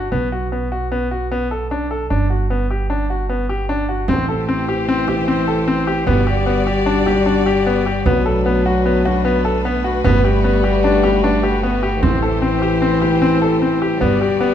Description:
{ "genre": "contemporary instrumental, chamber music in an uneven meter", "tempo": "151 BPM", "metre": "5/4", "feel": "straight", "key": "A dorian", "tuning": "A4 = 440 Hz", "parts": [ { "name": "bright concert grand piano", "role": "arpeggios", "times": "0.0-14.5 s", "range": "B3 to A4", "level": "-19 LUFS", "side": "left 2 dB", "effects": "none" }, { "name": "upright bass", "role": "bass", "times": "0.0-14.5 s", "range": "G1 to B1", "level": "-22 LUFS", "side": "right 2 dB", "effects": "none" }, { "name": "dark French horn", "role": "second line", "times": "4.1-14.5 s", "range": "D#3 to G3", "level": "-19 LUFS", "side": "left 3 dB", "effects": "none" }, { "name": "rich studio string section", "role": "sustained chords", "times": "4.1-14.5 s", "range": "G3 to D5", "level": "-23 LUFS", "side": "equal", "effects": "none" }, { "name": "frame drum", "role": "percussion", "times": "4.1-14.2 s", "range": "none", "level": "-24 LUFS", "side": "right 4 dB", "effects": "none" } ], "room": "moderate recital hall reverb, RT60 1.4 s", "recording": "dark, warm production", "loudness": "-15 LUFS", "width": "side -9 dB against mid", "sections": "0.0-4.1 A section; 4.1-14.5 A section", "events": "none", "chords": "0.1 B7(no3); 2.1 Gmaj7; 4.1 Am7; 6.1 Gmaj7; 8.1 Bm7; 10.0 Gmaj9; 12.0 Am7; 14.0 Gmaj7", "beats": "| 0.12 0.52 0.91 1.31 1.71 | 2.10 2.50 2.90 3.29 3.69 | 4.09 4.49 4.88 5.28 5.67 | 6.07 6.47 6.87 7.26 7.66 | 8.06 8.45 8.85 9.25 9.65 | 10.04 10.44 10.84 11.23 11.63 | 12.03 12.43 12.82 13.22 13.62 | 14.01 14.41" }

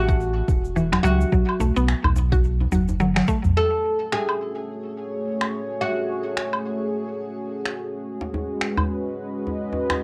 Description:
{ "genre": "organic downtempo", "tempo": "107 BPM", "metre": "4/4", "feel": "swing 58% on 16ths", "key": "F# dorian", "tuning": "A4 = 439 Hz", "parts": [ { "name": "oud", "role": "melody", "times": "0.0-7.7 s", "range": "F#4 to A4", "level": "-28 LUFS", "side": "equal", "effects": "cassette tape, tape echo, plate reverb" }, { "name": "warm sub bass", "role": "bass", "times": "0.0-3.5 s", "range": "E1 to C#2", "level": "-25 LUFS", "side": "equal", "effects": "sidechain pumping" }, { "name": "mallet-like synth pluck", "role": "arpeggios", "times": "0.1-3.4 s", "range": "E3 to F#4", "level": "-26 LUFS", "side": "equal", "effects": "chorus, cassette tape, tape echo" }, { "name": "electronic kick drum", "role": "drums", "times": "0.1-3.4 s", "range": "none", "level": "-24 LUFS", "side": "equal", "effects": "cassette tape" }, { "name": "organic electronic drum kit", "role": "drums", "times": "0.1-10.0 s", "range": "finger snaps, shaker, toms, woodblock", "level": "-28 LUFS", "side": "equal", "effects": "cassette tape" }, { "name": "djembe", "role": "percussion", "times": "0.1-3.4, 8.2-10.0 s", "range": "none", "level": "-30 LUFS", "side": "equal", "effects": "none" }, { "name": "warm analog pad", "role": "sustained chords", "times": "3.6-10.0 s", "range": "G#3 to D#5", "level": "-30 LUFS", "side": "equal", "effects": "chorus, sidechain pumping, cassette tape" } ], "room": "light reverb", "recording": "home recording on cassette", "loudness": "-23 LUFS", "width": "mono", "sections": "0.0-3.6 A section; 3.6-10.0 B section", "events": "drum fill 3.0-3.6; band accent 3.1", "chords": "0.0 A6; 1.3 B5; 3.6 F#madd9; 8.1 Badd9", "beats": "0.20 0.76 | 1.32 1.88 2.44 3.00 | 3.57 4.13 4.69 5.25 | 5.81 6.37 6.93 7.49 | 8.05 8.61 9.17 9.73" }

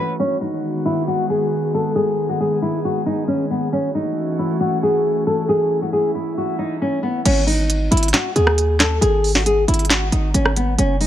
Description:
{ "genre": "hip hop, trap", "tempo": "136 BPM", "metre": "4/4", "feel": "half-time", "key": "G# phrygian", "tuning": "A4 = 439 Hz", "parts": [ { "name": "nylon-string guitar", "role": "melody", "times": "0.0-11.1 s", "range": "B3 to B4", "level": "-19 LUFS", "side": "left 1 dB", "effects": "low-pass filter" }, { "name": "airy breathy pad", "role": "sustained chords", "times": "0.0-7.2 s", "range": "D#3 to G#4", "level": "-24 LUFS", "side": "equal", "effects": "chorus" }, { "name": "hard-hitting 808-style bass", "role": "bass", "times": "7.3-11.1 s", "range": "F#1 to D#2", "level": "-18 LUFS", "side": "equal", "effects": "none" }, { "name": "trap drum kit", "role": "drums", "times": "7.3-11.1 s", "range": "crash cymbal, handclaps, hi-hat, rim click, snare drum", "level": "-19 LUFS", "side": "equal", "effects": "none" } ], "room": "light reverb", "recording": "low-pass filter", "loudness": "-16 LUFS", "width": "side -11 dB against mid", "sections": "0.2-7.3 A section; 7.3-11.1 B section", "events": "break 0.0; filter sweep 0.2-7.3", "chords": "0.2 G#m7; 3.7 F#m7; 7.3 G#5", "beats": "| 0.20 0.64 1.08 1.52 | 1.96 2.40 2.85 3.29 | 3.73 4.17 4.61 5.05 | 5.49 5.93 6.37 6.82 | 7.26 7.70 8.14 8.58 | 9.02 9.46 9.90 10.35 | 10.79" }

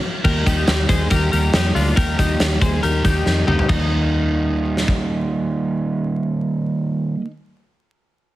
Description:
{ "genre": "jangly indie pop", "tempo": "139 BPM", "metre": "4/4", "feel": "straight", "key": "Eb major", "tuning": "A4 = 436 Hz", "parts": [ { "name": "crunchy overdriven guitar", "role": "accompaniment", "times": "0.2-7.3 s", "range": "Eb3 to Eb4", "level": "-22 LUFS", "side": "right 3 dB", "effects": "none" }, { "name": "twelve-string electric guitar", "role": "arpeggios", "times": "0.2-4.9 s", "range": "D4 to C5", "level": "-23 LUFS", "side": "left 4 dB", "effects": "tape echo" }, { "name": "vintage muted fingered electric bass", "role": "bass", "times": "0.2-6.8 s", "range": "D2 to F2", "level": "-21 LUFS", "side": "equal", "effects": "none" }, { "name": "big rock drum kit", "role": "drums", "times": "0.2-5.0 s", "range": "crash cymbal, hi-hat, kick drum, snare drum, toms", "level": "-20 LUFS", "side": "equal", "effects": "none" } ], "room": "little or no reverb", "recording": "heavily compressed radio sound, multiband compression, vinyl crackle", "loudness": "-16 LUFS", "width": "side -15 dB against mid", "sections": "0.2-3.7 A section; 3.7-7.1 B section", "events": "band accent 0.0; drum fill 3.3-3.7", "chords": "0.2 Eb", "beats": "| 0.25 0.68 1.11 1.54 | 1.97 2.40 2.83 3.26 | 3.69 4.12 4.56 4.99 | 5.42 5.85 6.28 6.71" }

